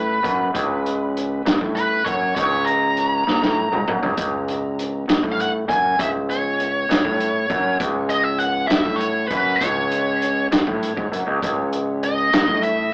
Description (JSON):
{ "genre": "psychedelic rock", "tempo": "66 BPM (dotted quarters)", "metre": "6/8", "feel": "straight", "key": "C# minor", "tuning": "A4 = 440 Hz", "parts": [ { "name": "bluesy overdriven lead guitar", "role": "melody", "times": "0.0-12.9 s", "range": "B4 to A#5", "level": "-24 LUFS", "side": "equal", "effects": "wah, distortion, analog delay" }, { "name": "electric guitar through a small old amp", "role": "riff", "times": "0.0-12.9 s", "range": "C#2 to A2", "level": "-25 LUFS", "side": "equal", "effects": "none" }, { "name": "fingered electric bass", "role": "bass", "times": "0.0-12.9 s", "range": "C#1 to A1", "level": "-44 LUFS", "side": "equal", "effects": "none" }, { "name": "vintage drum kit", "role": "drums", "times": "0.2-12.8 s", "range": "hi-hat, kick drum, snare drum, toms", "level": "-26 LUFS", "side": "equal", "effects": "none" } ], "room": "moderate small room ambience, RT60 0.5 s", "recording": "rough rehearsal-room recording, warm saturation, AM radio sound", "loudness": "-21 LUFS", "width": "mono", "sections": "0.0-12.9 A section", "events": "lead electric guitar solo 0.0-12.9; drum fill 3.3-4.2", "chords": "0.0 C#5", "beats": "| 0.55 1.46 | 2.37 3.27 | 4.18 5.09 | 6.00 6.90 | 7.81 8.71 | 9.62 10.52 | 11.43 12.33" }